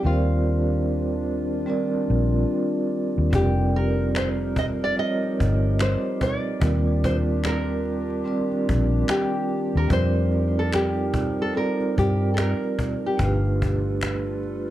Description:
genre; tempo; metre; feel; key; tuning
lo-fi hip hop; 73 BPM; 4/4; swing 62% on 16ths; unclear; A4 = 441 Hz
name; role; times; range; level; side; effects
nylon-string guitar; melody; 0.0-14.7 s; F4 to Eb5; -28 LUFS; equal; plate reverb
vibraphone with soft mallets; accompaniment; 0.0-14.7 s; G3 to Eb5; -26 LUFS; right 2 dB; cassette tape, plate reverb
warbly tape-like pad; sustained chords; 0.0-14.7 s; Eb3 to B4; -32 LUFS; left 2 dB; chorus, built-in reverb, plate reverb
vintage muted fingered electric bass; bass; 0.0-14.7 s; F1 to G2; -23 LUFS; left 1 dB; none
cajon; drums; 3.3-14.7 s; none; -29 LUFS; equal; none
finger snap; percussion; 4.2-14.3 s; none; -38 LUFS; left 3 dB; none
room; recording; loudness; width
light reverb; dark, warm production; -21 LUFS; side -13 dB against mid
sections
0.0-14.7 A section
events
none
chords
0.0 Ebmaj9; 3.3 F9sus4; 6.6 Ebmaj9; 9.9 F9sus4; 13.2 G9

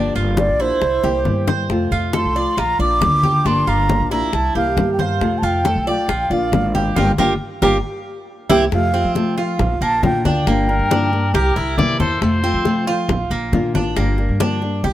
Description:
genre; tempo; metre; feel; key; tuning
latin, Cuban son and guajira; 137 BPM; 4/4; straight; F major; A4 = 440 Hz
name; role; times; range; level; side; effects
breathy mellow concert flute; melody; 0.0-11.5 s; C5 to D6; -20 LUFS; right 2 dB; none
nylon-string guitar; accompaniment; 0.0-14.9 s; C3 to G4; -23 LUFS; left 3 dB; none
Cuban tres; arpeggios; 0.0-14.9 s; Bb3 to D5; -23 LUFS; right 3 dB; none
upright bass; bass; 0.0-14.9 s; G1 to F3; -21 LUFS; equal; none
bongos; percussion; 0.2-14.9 s; none; -25 LUFS; left 5 dB; none
congas; percussion; 0.2-14.9 s; none; -24 LUFS; left 2 dB; none
clear trumpet; second line; 10.7-13.1 s; Bb4 to D5; -23 LUFS; left 3 dB; none
room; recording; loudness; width
light reverb; none; -15 LUFS; side -13 dB against mid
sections
0.0-8.7 A section; 8.7-14.9 B section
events
drum fill 1.0-1.7; band accent 7.0-8.7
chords
0.0 Gm7; 0.8 C7; 1.7 F; 2.6 Bb; 3.5 Gm7; 4.3 C7; 5.2 F; 6.1 Bb; 7.0 Gm7; 7.8 C7; 8.7 F; 9.6 Bb; 10.5 Gm7; 11.3 C7; 12.2 F; 13.1 Bb; 14.0 Gm7

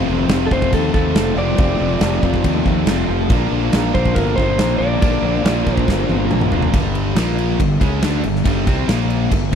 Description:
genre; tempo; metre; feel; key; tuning
classic rock; 140 BPM; 4/4; straight; unclear; A4 = 441 Hz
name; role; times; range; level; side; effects
picked twelve-string acoustic guitar; accompaniment; 0.0-6.7 s; Bb2 to Bb4; -30 LUFS; right 10 dB; none
overdriven electric guitar; riff; 0.0-9.6 s; F2 to D4; -24 LUFS; left 1 dB; none
sludgy distorted guitar; riff; 0.0-9.6 s; F2 to F4; -23 LUFS; left 14 dB; overdrive
tight distorted guitar; riff; 0.0-9.5 s; F2 to D4; -26 LUFS; right 13 dB; distortion
fuzz fingered electric bass; bass; 0.0-9.6 s; F1 to Eb2; -21 LUFS; equal; overdrive
huge arena drum kit; drums; 0.3-9.6 s; crash cymbal, kick drum, snare drum, toms; -19 LUFS; right 1 dB; none
electric slide guitar; melody; 0.5-6.3 s; A4 to D5; -22 LUFS; equal; slapback echo
room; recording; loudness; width
studio reverb; none; -14 LUFS; side -8 dB against mid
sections
0.0-6.7 A section; 6.7-9.6 B section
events
drum fill 5.9-6.7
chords
0.0 F; 3.3 Bb; 6.7 G5; 7.2 Bb5; 7.6 G5; 8.9 Bb5

